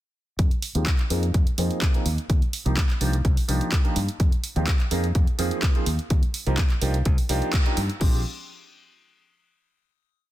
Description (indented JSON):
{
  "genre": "filtered disco house",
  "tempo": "126 BPM",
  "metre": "4/4",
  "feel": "straight",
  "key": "Bb mixolydian",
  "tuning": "A4 = 440 Hz",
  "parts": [
    { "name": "modern bright fingered electric bass", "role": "bass", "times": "0.4-8.2 s", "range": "Bb1 to G2", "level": "-25 LUFS", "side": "equal", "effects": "sidechain pumping, low-pass filter" },
    { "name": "electronic kick drum", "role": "drums", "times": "0.4-8.1 s", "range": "none", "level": "-21 LUFS", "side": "equal", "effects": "none" },
    { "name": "punchy analog drum machine", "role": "drums", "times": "0.4-8.1 s", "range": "crash cymbal, handclaps, hi-hat", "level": "-31 LUFS", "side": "right 1 dB", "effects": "sidechain pumping on hats, sidechain pumping on cymbals" },
    { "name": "clear baby grand piano", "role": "accompaniment", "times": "0.7-8.2 s", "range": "F3 to Ab4", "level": "-29 LUFS", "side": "right 2 dB", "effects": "phaser, vintage 12-bit sampler grit, sidechain pumping, low-pass filter" }
  ],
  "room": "digital ambience",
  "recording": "dense, heavily limited modern master",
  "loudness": "-21 LUFS",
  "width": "side -14 dB against mid",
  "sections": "0.4-8.0 groove; 8.0-9.9 final chord",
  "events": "filter sweep 0.4-8.0; band accent 7.5",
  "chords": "0.4 Fm7; 1.1 Bb7sus4/F; 2.1 Eb69; 3.0 Cm11; 4.2 Fm7; 4.9 Bb7sus4/F; 5.9 Eb69; 6.8 Cm11; 8.0 Bb13"
}